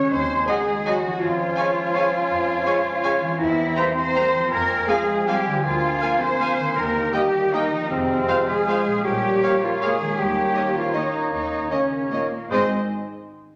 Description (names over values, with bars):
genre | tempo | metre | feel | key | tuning
classical | 144-177 BPM | 3/4 | rubato | Ab major | A4 = 436 Hz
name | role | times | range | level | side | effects
mellow hollow concert flute | second line | 0.0-12.7 s | Bb4 to Db6 | -31 LUFS | equal | none
warm clarinet | second line | 0.0-12.7 s | Bb3 to Db5 | -32 LUFS | equal | none
warm oboe | second line | 0.0-12.7 s | C5 to Bb5 | -33 LUFS | equal | none
mellow bassoon | accompaniment | 0.0-12.7 s | Ab3 to Eb4 | -34 LUFS | equal | none
mellow French horn section | sustained chords | 0.0-12.7 s | Bb2 to Db4 | -30 LUFS | equal | none
concert harp | arpeggios | 0.0-12.7 s | Ab2 to C5 | -36 LUFS | equal | none
warm studio cello section | bass | 0.0-12.7 s | Ab3 to Db5 | -28 LUFS | equal | none
rich studio double bass section | bass | 0.1-12.7 s | Ab1 to F2 | -37 LUFS | equal | none
timpani | percussion | 0.1-0.6, 6.8-7.3, 12.5-12.7 s | Ab2 to Eb3 | -40 LUFS | equal | none
rich studio violin section | melody | 0.5-12.7 s | Eb5 to Bb5 | -37 LUFS | equal | none
warm studio violin section | second line | 0.5-12.7 s | C5 to G5 | -40 LUFS | equal | none
clear studio viola section | accompaniment | 0.5-12.7 s | Ab3 to Eb4 | -39 LUFS | equal | none
mellow trombone section | sustained chords | 0.5-12.7 s | Eb3 to C4 | -36 LUFS | equal | none
warm trumpet | stabs | 0.5-12.7 s | C5 to F5 | -29 LUFS | equal | none
room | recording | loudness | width
wet stone room reverb, RT60 1.3 s | none | -22 LUFS | mono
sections
0.0-12.5 A section; 12.5-13.6 B section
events
none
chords
0.1 Ab7/Eb; 1.2 Db/F; 3.4 C7/E; 4.5 Fm; 5.6 Bb7/D; 6.8 Eb; 7.9 Fm; 9.0 Bbm7; 10.2 Eb7; 12.5 Ab